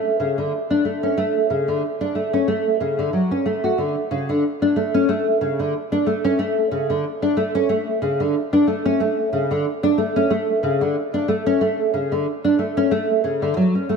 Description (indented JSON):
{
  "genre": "folktronica",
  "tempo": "92 BPM",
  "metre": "4/4",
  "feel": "swing 56% on 16ths",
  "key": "D major",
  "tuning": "A4 = 439 Hz",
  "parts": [
    { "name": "nylon-string guitar", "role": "solo", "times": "0.0-14.0 s", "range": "C#3 to F#4", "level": "-18 LUFS", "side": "equal", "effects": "analog chorus, diffuse ambient delay" }
  ],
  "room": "wet plate reverb, RT60 2.4 s",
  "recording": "dreamy mix soaked in reverb",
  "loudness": "-18 LUFS",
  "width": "side -5 dB against mid",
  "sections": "0.0-4.1 A section; 4.1-14.0 B section",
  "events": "none",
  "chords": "none"
}